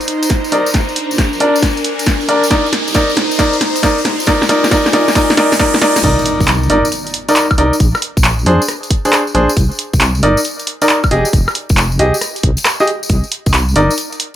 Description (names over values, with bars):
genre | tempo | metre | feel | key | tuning
UK garage, two-step garage | 136 BPM | 4/4 | swing 67% on 16ths | C minor | A4 = 438 Hz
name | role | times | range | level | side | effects
punchy analog drum machine | drums | 0.0-14.3 s | crash cymbal, handclaps, hi-hat, rim click, snare drum, woodblock | -16 LUFS | equal | none
tambourine | percussion | 0.0-14.2 s | none | -24 LUFS | left 3 dB | none
riser and impact | sound effects | 0.0-7.8 s | none | -22 LUFS | equal | none
airy breathy pad | texture | 0.0-6.0 s | D4 to Bb5 | -20 LUFS | left 1 dB | chorus, sidechain pumping
electronic kick drum | drums | 0.3-13.5 s | none | -15 LUFS | equal | none
warm grand piano | stabs | 0.5-13.9 s | D4 to Eb5 | -14 LUFS | equal | dub echo
deep soft wobble bass | bass | 0.5-13.9 s | Eb1 to F2 | -17 LUFS | equal | chorus, high-pass filter
room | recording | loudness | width
light reverb, digital ambience | none | -11 LUFS | side -11 dB against mid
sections
0.0-6.0 A section; 6.0-14.4 B section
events
build-up 0.0-6.0; drum fill 0.0-6.0; riser 0.0-6.0; drop 6.0-14.4; impact 6.0-7.8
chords
0.0 Cm7; 0.7 Bb7; 2.5 Cm7; 4.1 Fm7; 6.0 Cm7; 7.8 Bb7; 9.6 Cm7; 11.1 Fm7; 13.1 Cm7